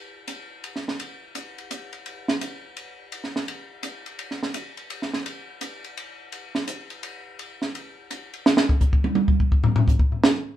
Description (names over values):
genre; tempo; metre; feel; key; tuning
jazz; 169 BPM; 3/4; swing 64% on 8ths; none; none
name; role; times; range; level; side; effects
compact cocktail drum kit; drums; 0.3-10.3 s; hi-hat, kick drum, ride cymbal, snare drum, toms; -23 LUFS; equal; none
room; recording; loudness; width
wet small room ambience, RT60 0.5 s; band playing live in one room; -22 LUFS; side -12 dB against mid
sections
0.0-8.5 A section; 8.5-10.6 B section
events
drum solo 8.5-10.6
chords
none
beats
0.28 0.64 | 0.99 1.35 1.70 | 2.06 2.41 2.77 | 3.12 3.48 3.83 | 4.19 4.55 4.90 | 5.26 5.61 5.97 | 6.32 6.68 7.03 | 7.39 7.75 8.10 | 8.46 8.81 9.17 | 9.52 9.88 10.23